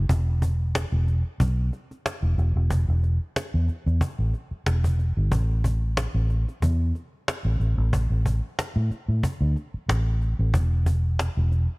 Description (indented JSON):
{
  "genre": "straight-eighth soul blues",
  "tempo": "92 BPM",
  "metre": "4/4",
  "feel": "swing 55% on 16ths",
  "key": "unclear",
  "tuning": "A4 = 444 Hz",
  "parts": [
    { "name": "vintage muted fingered electric bass", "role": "bass", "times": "0.0-11.7 s", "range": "E1 to A2", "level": "-22 LUFS", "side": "equal", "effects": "none" },
    { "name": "cajon", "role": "drums", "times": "0.1-11.6 s", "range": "none", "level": "-28 LUFS", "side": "equal", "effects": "none" }
  ],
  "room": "small room reverb",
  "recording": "none",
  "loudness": "-22 LUFS",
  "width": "side -26 dB against mid",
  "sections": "0.0-11.8 A section",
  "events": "none",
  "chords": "none",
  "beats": "| 0.09 0.75 1.40 2.05 | 2.71 3.36 4.01 4.66 | 5.32 5.97 6.62 7.27 | 7.93 8.58 9.23 9.88 | 10.54 11.19"
}